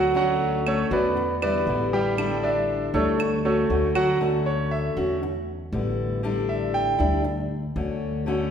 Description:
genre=latin, Cuban son and guajira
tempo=118 BPM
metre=4/4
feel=straight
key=D major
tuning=A4 = 442 Hz
part: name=fingerpicked steel-string acoustic guitar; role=accompaniment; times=0.0-8.5 s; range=D3 to F#4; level=-26 LUFS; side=left 3 dB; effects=none
part: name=bright concert grand piano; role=arpeggios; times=0.0-7.2 s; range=F#3 to G5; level=-24 LUFS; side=right 2 dB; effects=none
part: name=upright bass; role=bass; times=0.0-8.5 s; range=A1 to E2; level=-29 LUFS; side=equal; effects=none
part: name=claves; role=percussion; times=0.7-4.2 s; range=none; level=-36 LUFS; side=right 5 dB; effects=none
room=wet scoring stage reverb, RT60 1.6 s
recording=recorded in a church or concert hall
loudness=-22 LUFS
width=side -8 dB against mid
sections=0.0-4.2 A section; 4.2-8.5 B section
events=grand piano solo 4.2-8.5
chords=0.0 Dmaj7; 1.2 Em7; 2.2 A7sus4; 3.2 Dmaj7; 5.2 Em7; 6.2 A7sus4; 7.3 Dmaj7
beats=| 0.16 0.67 1.17 1.68 | 2.18 2.69 3.20 3.70 | 4.21 4.72 5.22 5.73 | 6.24 6.75 7.25 7.76 | 8.27

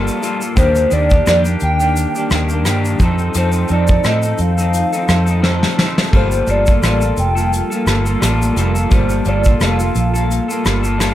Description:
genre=indie pop, bedroom pop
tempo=86 BPM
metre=4/4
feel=swing 55% on 16ths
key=G minor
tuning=A4 = 440 Hz
part: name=electric guitar through a small old amp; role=accompaniment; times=0.0-11.1 s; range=Eb3 to A4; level=-20 LUFS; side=left 2 dB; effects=analog chorus, warbly pitch drift
part: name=string machine, cellos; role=sustained chords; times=0.0-11.1 s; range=Eb3 to A5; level=-25 LUFS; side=right 1 dB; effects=ensemble chorus
part: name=vintage muted fingered electric bass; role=bass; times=0.0-11.1 s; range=F1 to A2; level=-17 LUFS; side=equal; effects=none
part: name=soft brush drum kit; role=drums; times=0.1-11.1 s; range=hi-hat, kick drum, rim click, shaker, snare drum, splash cymbal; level=-17 LUFS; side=equal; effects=none
part: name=hollow clarinet-like synth lead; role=melody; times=0.6-10.6 s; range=C5 to G5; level=-19 LUFS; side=equal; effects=lush chorus, slapback echo
room=light reverb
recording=none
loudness=-13 LUFS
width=side -13 dB against mid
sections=0.0-11.1 A section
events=drum fill 5.4-6.1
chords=0.0 Gm9; 0.6 Ebmaj7; 3.0 F7; 6.1 Gm9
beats=| 0.57 1.26 1.96 2.66 | 3.35 4.05 4.75 5.44 | 6.14 6.83 7.53 8.22 | 8.92 9.61 10.31 11.00

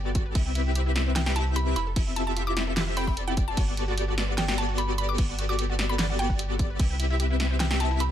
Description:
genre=future bass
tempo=149 BPM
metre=4/4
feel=half-time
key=G major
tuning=A4 = 438 Hz
part: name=mallet-like synth pluck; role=melody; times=0.0-8.1 s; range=G5 to D6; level=-33 LUFS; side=right 1 dB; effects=chorus, sidechain pumping, dub echo
part: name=airy dreamy lead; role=arpeggios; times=0.0-8.1 s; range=D5 to G5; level=-38 LUFS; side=equal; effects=chorus, sidechain pumping, ping-pong delay
part: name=big bright polysynth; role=riff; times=0.0-8.1 s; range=B3 to G5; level=-32 LUFS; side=left 3 dB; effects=analog chorus, sidechain pumping
part: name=saturated sub bass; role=bass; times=0.0-8.1 s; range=F1 to C2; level=-28 LUFS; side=equal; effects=sidechain pumping
part: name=wide unison pluck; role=arpeggios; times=0.1-8.0 s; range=E4 to G5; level=-40 LUFS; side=left 2 dB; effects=sidechain pumping, ping-pong delay
part: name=electronic kick drum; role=drums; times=0.1-6.9 s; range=none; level=-26 LUFS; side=equal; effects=none
part: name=pop drum kit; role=drums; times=0.1-8.1 s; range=crash cymbal, hi-hat, snare drum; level=-31 LUFS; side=right 1 dB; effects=none
room=digital ambience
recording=none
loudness=-24 LUFS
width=side -10 dB against mid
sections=0.0-8.1 A section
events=none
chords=0.4 Cmaj7; 1.8 Fmaj9; 3.6 Gmaj9; 6.8 Cmaj7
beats=| 0.35 0.75 1.16 1.56 | 1.96 2.37 2.77 3.17 | 3.57 3.98 4.38 4.78 | 5.18 5.59 5.99 6.39 | 6.79 7.20 7.60 8.00

